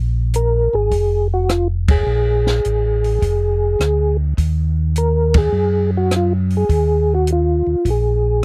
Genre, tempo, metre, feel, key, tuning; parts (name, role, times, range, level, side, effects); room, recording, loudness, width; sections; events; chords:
soul jazz organ trio; 104 BPM; 4/4; swing 68% on 8ths; A4 = 440 Hz
mellow tonewheel organ; bass; 0.0-8.4 s; F1 to Gb2; -20 LUFS; equal; slow rotary speaker
compact cocktail drum kit; drums; 0.3-8.0 s; hi-hat, kick drum, ride cymbal, rim click, snare drum; -21 LUFS; equal
percussive tonewheel organ; melody; 0.4-8.4 s; F4 to Bb4; -20 LUFS; equal; slow rotary speaker, chorus vibrato
little or no reverb; dry, close 1970s-style studio recording; -17 LUFS; mono
0.0-8.4 A section
band accent 1.8, 5.2
0.0 Bb7(no3); 4.4 Ebm